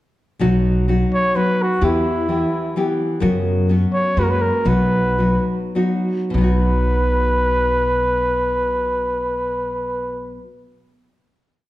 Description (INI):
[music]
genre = mexican folk, mariachi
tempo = 97-129 BPM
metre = 3/4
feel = straight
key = B major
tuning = A4 = 440 Hz
[part]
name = nylon-string guitar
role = accompaniment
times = 0.4-10.5 s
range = F#2 to G4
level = -20 LUFS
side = left 1 dB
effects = none
[part]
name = upright bass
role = bass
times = 0.4-10.4 s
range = B1 to F#2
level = -21 LUFS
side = equal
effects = none
[part]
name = mellow trumpet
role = melody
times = 1.1-10.4 s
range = E4 to C#5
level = -20 LUFS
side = equal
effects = none
[sound]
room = moderate recital hall reverb, RT60 1.4 s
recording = dark, warm production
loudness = -16 LUFS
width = side -16 dB against mid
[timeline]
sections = 0.4-6.3 A section; 6.3-10.0 final chord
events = slowing down 3.2-6.3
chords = 0.4 B; 1.8 Em; 3.2 F#sus4; 4.2 F#add9; 4.7 B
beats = | 0.42 0.89 1.36 | 1.83 2.29 2.76 | 3.23 3.69 4.17 | 4.67 5.19 5.75 | 6.34 6.96 7.58 | 8.18 8.79 9.40